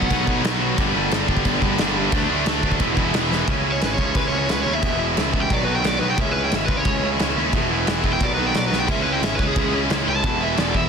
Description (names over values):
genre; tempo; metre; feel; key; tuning
punk rock; 178 BPM; 4/4; straight; unclear; A4 = 438 Hz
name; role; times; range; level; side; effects
overdriven electric guitar; melody; 0.0-0.4, 3.7-10.9 s; G#4 to A5; -25 LUFS; equal; none
scooped high-gain guitar; riff; 0.0-3.5, 8.9-10.9 s; E2 to D4; -27 LUFS; left 1 dB; distortion
tight distorted guitar; riff; 0.0-10.9 s; E2 to D4; -25 LUFS; left 17 dB; distortion
tight distorted guitar; riff; 0.0-10.9 s; G2 to E4; -25 LUFS; right 19 dB; distortion
fuzz picked electric bass; bass; 0.0-10.9 s; E1 to D#2; -26 LUFS; equal; overdrive
loose indie drum kit; drums; 0.0-10.8 s; crash cymbal, kick drum, snare drum; -24 LUFS; equal; none
room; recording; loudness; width
little or no reverb; dense, heavily limited modern master; -18 LUFS; side -6 dB against mid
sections
0.0-3.5 A section; 3.5-10.9 B section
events
drum fill 3.3, 8.7; overdriven electric guitar solo 3.5-10.9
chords
0.0 B; 0.8 G; 2.1 D; 2.8 E; 3.5 C#m; 4.8 E; 5.5 B; 6.2 C#m; 7.5 E; 8.2 B; 8.9 C#m; 10.2 E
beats
0.11 0.45 | 0.78 1.12 1.46 1.79 | 2.13 2.47 2.80 3.14 | 3.48 3.82 4.16 4.49 | 4.83 5.17 5.51 5.85 | 6.19 6.53 6.86 7.20 | 7.54 7.88 8.21 8.55 | 8.89 9.23 9.56 9.90 | 10.24 10.57